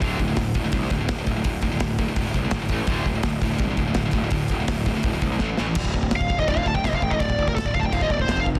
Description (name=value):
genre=heavy metal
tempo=167 BPM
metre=4/4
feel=straight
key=D minor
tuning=A4 = 440 Hz
part: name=distorted electric guitar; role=riff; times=0.0-8.6 s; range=D2 to A3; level=-31 LUFS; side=equal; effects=distortion
part: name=scooped high-gain guitar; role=riff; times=0.0-5.8 s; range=D2 to A3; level=-30 LUFS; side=equal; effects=distortion
part: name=fuzz picked electric bass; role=bass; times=0.0-8.6 s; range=D1 to C2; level=-29 LUFS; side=equal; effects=overdrive
part: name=modern studio drum kit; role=drums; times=0.0-8.6 s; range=crash cymbal, hi-hat, kick drum, snare drum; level=-28 LUFS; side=equal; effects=none
part: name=high-gain lead guitar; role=melody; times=6.2-8.4 s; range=A4 to A5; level=-26 LUFS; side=equal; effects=distortion
room=small room reverb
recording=dense, heavily limited modern master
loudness=-23 LUFS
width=mono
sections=0.0-5.8 A section; 5.8-8.6 B section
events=drum fill 5.4-5.8; lead electric guitar solo 5.8-8.6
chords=0.0 D5; 2.7 A5; 2.9 D5; 5.4 A5; 5.8 D5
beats=| 0.02 0.38 0.74 1.09 | 1.45 1.81 2.17 2.53 | 2.89 3.25 3.61 3.97 | 4.33 4.68 5.04 5.40 | 5.76 6.12 6.48 6.84 | 7.20 7.56 7.92 8.28